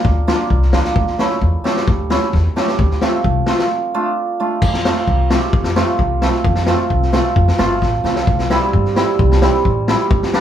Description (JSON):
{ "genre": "klezmer", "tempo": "131 BPM", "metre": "2/4", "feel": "straight", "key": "unclear", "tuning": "A4 = 441 Hz", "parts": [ { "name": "upright bass", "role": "bass", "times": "0.0-10.4 s", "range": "G1 to G2", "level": "-18 LUFS", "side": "equal", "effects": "none" }, { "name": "street-band drum kit", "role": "drums", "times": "0.0-10.4 s", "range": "crash cymbal, kick drum, snare drum", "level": "-18 LUFS", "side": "left 2 dB", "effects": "none" }, { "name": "hammered dulcimer", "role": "accompaniment", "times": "0.3-10.4 s", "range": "G3 to G4", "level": "-18 LUFS", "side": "right 3 dB", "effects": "none" } ], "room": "moderate studio reverb, RT60 0.6 s", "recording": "heard from further back in the room", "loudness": "-13 LUFS", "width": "side -10 dB against mid", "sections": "0.0-4.6 A section; 4.6-10.4 B section", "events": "break 3.7-4.6; drum fill 7.8-8.3", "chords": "0.0 Bb/D; 1.0 A/D; 2.8 F/D; 3.7 Dm; 4.6 F; 8.3 C" }